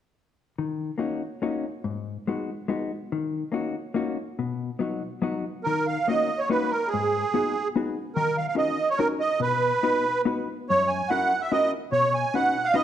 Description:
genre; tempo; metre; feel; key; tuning
musette; 143 BPM; 3/4; rubato; Eb minor; A4 = 439 Hz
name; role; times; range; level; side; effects
hollow-body jazz guitar; accompaniment; 0.6-12.8 s; Gb2 to B4; -28 LUFS; left 5 dB; none
musette accordion; melody; 5.6-12.8 s; Ab4 to Ab5; -23 LUFS; right 3 dB; none
room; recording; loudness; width
moderate recital hall reverb, RT60 1.5 s; none; -24 LUFS; side -10 dB against mid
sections
0.6-5.6 A section; 5.6-12.8 B section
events
none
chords
0.6 Ebm7; 1.9 Abm7; 3.1 Ebm7; 4.4 B; 5.6 Ebm7; 6.9 Abm7; 8.1 Ebm7; 9.4 B; 10.7 Gb7; 11.9 Badd9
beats
| 0.57 1.00 1.43 | 1.85 2.27 2.69 | 3.11 3.52 3.94 | 4.36 4.79 5.21 | 5.64 6.07 6.49 | 6.90 7.32 7.73 | 8.15 8.56 8.97 | 9.39 9.82 10.24 | 10.67 11.10 11.52 | 11.93 12.35 12.76

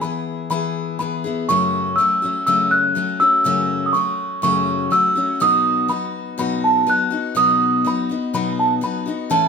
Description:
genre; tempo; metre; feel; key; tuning
country; 123 BPM; 4/4; straight; unclear; A4 = 440 Hz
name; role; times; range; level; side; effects
celesta; melody; 0.0-9.5 s; A5 to F#6; -18 LUFS; right 2 dB; none
picked steel-string acoustic guitar; accompaniment; 0.0-9.5 s; F#2 to A4; -22 LUFS; left 5 dB; none
room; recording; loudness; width
wet stone room reverb, RT60 1.1 s; band playing live in one room; -16 LUFS; side -6 dB against mid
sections
0.0-9.5 A section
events
none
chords
0.0 E; 1.5 F#m; 5.4 B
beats
0.02 0.51 1.00 | 1.49 1.98 2.47 2.96 | 3.45 3.94 4.43 4.91 | 5.40 5.89 6.38 6.87 | 7.36 7.84 8.33 8.82 | 9.31

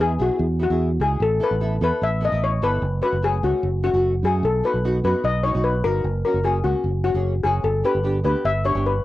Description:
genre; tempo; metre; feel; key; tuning
calypso; 149 BPM; 4/4; straight; unclear; A4 = 439 Hz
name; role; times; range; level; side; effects
steel pan; melody; 0.0-9.0 s; F#4 to E5; -22 LUFS; left 4 dB; none
nylon-string guitar; accompaniment; 0.0-8.9 s; A3 to B4; -27 LUFS; right 1 dB; double-tracked left and right
fingered electric bass; bass; 0.0-9.0 s; F#1 to F#2; -22 LUFS; right 2 dB; none
room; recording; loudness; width
light reverb; home recording on cassette, nothing above 10.9 kHz; -19 LUFS; side -15 dB against mid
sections
0.0-9.0 A section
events
none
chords
0.0 Eadd9; 1.2 Asus2; 2.8 F#m; 4.4 B; 6.0 F#; 7.6 G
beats
0.00 0.40 0.81 | 1.21 1.61 2.02 2.42 | 2.82 3.23 3.63 4.03 | 4.43 4.83 5.24 5.64 | 6.04 6.44 6.84 7.25 | 7.65 8.05 8.45 8.85

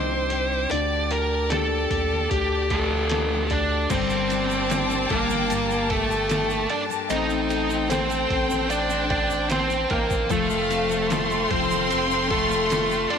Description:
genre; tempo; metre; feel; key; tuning
pop ballad; 75 BPM; 4/4; straight; G minor; A4 = 440 Hz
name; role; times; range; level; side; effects
bluesy overdriven lead guitar; melody; 0.0-13.2 s; A3 to Eb5; -24 LUFS; right 2 dB; distortion
warm concert grand piano; accompaniment; 0.0-13.2 s; C3 to G4; -32 LUFS; left 14 dB; none
rich studio string section; sustained chords; 0.0-13.2 s; G4 to D6; -30 LUFS; left 4 dB; none
picked steel-string acoustic guitar; arpeggios; 0.0-13.2 s; F2 to A4; -32 LUFS; left 11 dB; none
saturated sub bass; bass; 0.0-13.1 s; F1 to Eb2; -30 LUFS; right 1 dB; none
trip hop sampler-style drum kit; drums; 0.3-13.2 s; crash cymbal, hi-hat, kick drum, ride cymbal, snare drum; -31 LUFS; right 2 dB; none
warm studio violin section; second line; 3.9-13.2 s; F5 to C6; -28 LUFS; left 1 dB; tape echo
egg shaker; percussion; 3.9-13.1 s; none; -42 LUFS; right 20 dB; none
room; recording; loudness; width
moderate spring reverb, RT60 2.8 s; 1960s-style stereo with parts hard left and right; -21 LUFS; side -7 dB against mid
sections
0.0-3.9 A section; 3.9-13.2 B section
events
none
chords
0.0 Cmadd9; 0.7 Dsus4; 3.9 Gmadd9; 7.1 Adim; 10.3 Fadd9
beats
| 0.71 1.51 2.31 3.11 | 3.91 4.71 5.51 6.31 | 7.11 7.91 8.71 9.51 | 10.31 11.11 11.91 12.71

